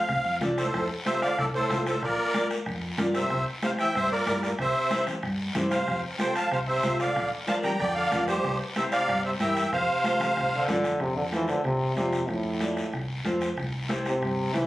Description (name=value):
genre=latin, cumbia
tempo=187 BPM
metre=4/4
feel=straight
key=F major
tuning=A4 = 440 Hz
part: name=musette accordion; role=melody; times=0.0-10.6 s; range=G4 to Bb5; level=-26 LUFS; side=right 1 dB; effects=none
part: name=bright trombone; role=second line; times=0.0-14.7 s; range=G2 to C4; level=-31 LUFS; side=equal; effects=none
part: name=hollow-body short-scale fingered electric bass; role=bass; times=0.1-14.7 s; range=Bb1 to G2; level=-33 LUFS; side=equal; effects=none
part: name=bombo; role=percussion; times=0.1-14.7 s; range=none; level=-37 LUFS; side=equal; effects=none
part: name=congas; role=percussion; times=0.1-14.7 s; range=none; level=-35 LUFS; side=equal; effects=none
part: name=guiro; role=percussion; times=0.1-14.7 s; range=none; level=-39 LUFS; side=left 3 dB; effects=none
part: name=clean electric guitar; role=accompaniment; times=0.4-14.7 s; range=E4 to D5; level=-32 LUFS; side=left 1 dB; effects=phaser
room=moderate studio reverb, RT60 0.7 s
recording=recorded on a phone in the room, studio reverb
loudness=-24 LUFS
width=side -16 dB against mid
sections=0.7-11.0 A section; 11.0-14.7 B section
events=trombone solo 11.0-14.7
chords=0.0 F; 2.0 Bb; 3.3 C7; 5.9 F; 7.2 Bb; 8.4 C7; 9.7 F; 13.6 C